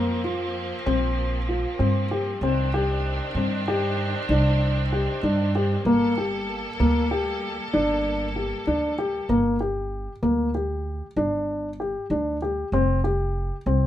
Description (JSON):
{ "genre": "contemporary instrumental, chamber music in an uneven meter", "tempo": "192 BPM (eighths)", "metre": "11/8", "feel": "straight", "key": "G minor", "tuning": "A4 = 444 Hz", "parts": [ { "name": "clear chamber string section", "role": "sustained chords", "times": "0.0-9.3 s", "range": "Eb3 to A4", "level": "-31 LUFS", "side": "right 1 dB", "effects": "none" }, { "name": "dark baby grand piano", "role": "arpeggios", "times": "0.0-13.9 s", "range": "Bb3 to G4", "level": "-24 LUFS", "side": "left 2 dB", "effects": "none" }, { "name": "upright bass", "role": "bass", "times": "0.0-13.9 s", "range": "F1 to G2", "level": "-26 LUFS", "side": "right 1 dB", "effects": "none" } ], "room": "light reverb", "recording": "none", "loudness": "-22 LUFS", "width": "side -12 dB against mid", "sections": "0.0-9.3 A section; 9.3-13.9 B section", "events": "none", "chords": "0.0 Bbsus2; 2.4 Cmadd9; 5.9 Gmadd9; 9.3 Gm; 12.7 Fsus2", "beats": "0.24 0.55 0.87 1.18 1.49 1.80 2.11 | 2.43 2.74 3.05 3.36 3.67 3.99 4.30 4.61 4.92 5.23 5.55 | 5.86 6.17 6.48 6.79 7.11 7.42 7.73 8.04 8.36 8.67 8.98 | 9.29 9.60 9.92 10.23 10.54 10.85 11.16 11.48 11.79 12.10 12.41 | 12.73 13.04 13.35 13.66" }